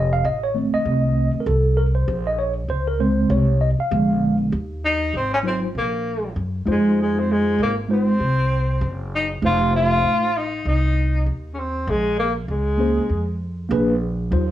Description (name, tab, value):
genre	hip hop, jazz-hop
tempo	98 BPM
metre	4/4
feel	swing 59% on 16ths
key	unclear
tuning	A4 = 440 Hz
part	mellow tine electric piano	accompaniment	0.0-14.5 s	Db3 to F5	-20 LUFS	right 1 dB	medium stereo tremolo, plate reverb
part	upright bass	bass	0.0-14.5 s	F1 to Gb2	-22 LUFS	equal	none
part	breathy tenor saxophone	melody	4.8-13.4 s	Ab3 to F4	-22 LUFS	left 1 dB	plate reverb
room	wet studio reverb, RT60 0.7 s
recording	worn, warbling old tape, cassette tape, warbly pitch drift, small room ambience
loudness	-18 LUFS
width	side -12 dB against mid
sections	0.0-4.5 A section; 4.5-14.5 B section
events	tine electric piano solo 0.0-4.5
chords	0.0 F7; 2.1 Bbm9; 3.9 Bb7b9; 4.5 Ebm; 6.7 Fm7; 9.4 F7; 11.9 Bbm9; 13.7 Bb7b9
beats	0.24 0.85 1.47 | 2.08 2.69 3.30 3.92 | 4.53 5.14 5.75 6.36 | 6.98 7.59 8.20 8.81 | 9.43 10.04 10.65 11.26 | 11.87 12.49 13.10 13.71 | 14.32